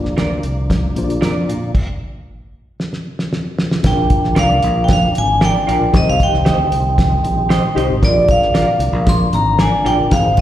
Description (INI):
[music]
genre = uptempo 1960s-style soul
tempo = 115 BPM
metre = 4/4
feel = straight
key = Bb mixolydian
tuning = A4 = 440 Hz
[part]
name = mellow reed electric piano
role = accompaniment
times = 0.0-10.4 s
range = Bb3 to D5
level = -22 LUFS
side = left 5 dB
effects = fast tremolo, slapback echo
[part]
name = tonewheel organ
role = sustained chords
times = 0.0-10.4 s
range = D3 to Eb4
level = -25 LUFS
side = right 1 dB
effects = chorus vibrato, stopped rotary speaker
[part]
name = fingered electric bass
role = bass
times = 0.0-10.3 s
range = G1 to Bb2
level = -18 LUFS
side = equal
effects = none
[part]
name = cloth-damped thuddy drum kit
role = drums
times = 0.1-10.4 s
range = crash cymbal, hi-hat, kick drum, snare drum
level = -17 LUFS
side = equal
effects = slapback echo
[part]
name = electric guitar through a small old amp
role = stabs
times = 0.2-9.9 s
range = F4 to Eb5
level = -24 LUFS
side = right 4 dB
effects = slapback echo
[part]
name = vibraphone with hard mallets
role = melody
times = 3.9-10.4 s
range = D5 to C6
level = -16 LUFS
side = equal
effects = slapback echo, tape echo
[sound]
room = moderate club reverb, RT60 0.7 s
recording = live gig heard through the venue's PA, recital hall reverb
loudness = -13 LUFS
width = side -12 dB against mid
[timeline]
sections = 0.0-3.8 A section; 3.8-10.4 B section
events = stop 1.7-3.8; drum fill 2.8-3.8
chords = 0.0 Bb; 1.7 N.C.; 3.8 Bb; 5.9 Cm; 8.0 Bb